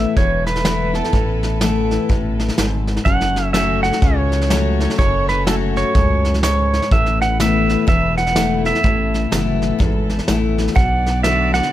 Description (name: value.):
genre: honky-tonk and classic country.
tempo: 125 BPM.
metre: 4/4.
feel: swing 61% on 8ths.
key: A major.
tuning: A4 = 441 Hz.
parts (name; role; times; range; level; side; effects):
pedal steel guitar; melody; 0.0-11.7 s; A4 to F#5; -20 LUFS; right 3 dB; none.
picked steel-string acoustic guitar; accompaniment; 0.0-11.7 s; E2 to F#4; -21 LUFS; left 6 dB; none.
warm studio violin section; sustained chords; 0.0-11.7 s; A3 to D5; -30 LUFS; right 1 dB; none.
rubbery square bass; bass; 0.0-11.6 s; E1 to C#2; -20 LUFS; equal; none.
vintage brush drum kit; drums; 0.2-11.7 s; hi-hat, kick drum, snare drum; -20 LUFS; equal; none.
room: little or no reverb.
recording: close, detailed microphones.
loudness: -15 LUFS.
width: side -13 dB against mid.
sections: 0.0-11.7 A section.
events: none.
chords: 0.0 Asus2; 3.1 F#m; 6.9 Asus2; 10.8 Bm.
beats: 0.17 0.65 | 1.13 1.62 2.10 2.58 | 3.06 3.54 4.02 4.50 | 4.99 5.47 5.95 6.43 | 6.91 7.39 7.87 8.35 | 8.83 9.31 9.80 10.28 | 10.76 11.24 11.72.